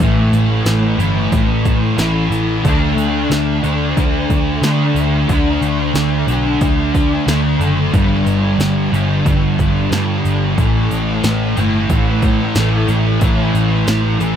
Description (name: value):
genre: rock, shoegaze and dream pop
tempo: 91 BPM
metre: 4/4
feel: straight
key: unclear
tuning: A4 = 439 Hz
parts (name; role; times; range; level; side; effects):
- fuzz guitar; riff; 0.0-14.4 s; G2 to D4; -16 LUFS; equal; distortion, ensemble chorus
- vintage muted picked electric bass; bass; 0.0-14.4 s; F#1 to D3; -18 LUFS; equal; none
- big-room dance drum kit; drums; 0.0-14.4 s; hi-hat, kick drum, snare drum; -18 LUFS; equal; none
room: digital ambience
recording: none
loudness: -13 LUFS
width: side -9 dB against mid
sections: 0.0-14.4 A section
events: none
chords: 0.0 A5; 2.6 D5; 7.9 G5; 10.6 A5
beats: | 0.00 0.67 1.33 1.99 | 2.65 3.31 3.97 4.63 | 5.29 5.96 6.62 7.28 | 7.94 8.60 9.26 9.92 | 10.58 11.24 11.90 12.56 | 13.22 13.88